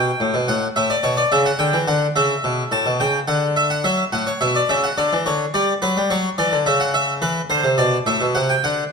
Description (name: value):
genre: classical, baroque-style two-part invention for harpsichord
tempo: 107 BPM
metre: 3/4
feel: straight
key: unclear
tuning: A4 = 441 Hz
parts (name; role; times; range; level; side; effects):
- harpsichord; solo; 0.0-8.8 s; A2 to A5; -17 LUFS; equal; none
room: moderate recital hall reverb, RT60 1.6 s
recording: none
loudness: -17 LUFS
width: side -5 dB against mid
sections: 0.0-3.9 A section; 3.9-8.9 B section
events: none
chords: 0.5 D/A; 1.6 G5/D; 2.2 A7; 3.3 D; 3.9 F#m7; 5.0 Dsus2; 5.5 Em7; 6.7 C#madd11; 7.2 E5; 8.4 D7/C